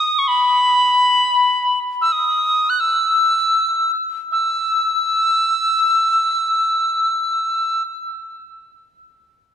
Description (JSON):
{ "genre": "celtic folk", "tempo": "35-52 BPM", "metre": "3/4", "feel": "rubato", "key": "unclear", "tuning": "A4 = 441 Hz", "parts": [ { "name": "bright wooden whistle", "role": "solo", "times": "0.0-7.8 s", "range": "B5 to F#6", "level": "-15 LUFS", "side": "left 1 dB", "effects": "none" } ], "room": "wet church reverb, RT60 2.6 s", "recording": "recorded in a church or concert hall", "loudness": "-15 LUFS", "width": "side -9 dB against mid", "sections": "0.0-4.3 A section; 4.3-9.2 B section", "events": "slowing down 0.0-4.3", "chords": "none" }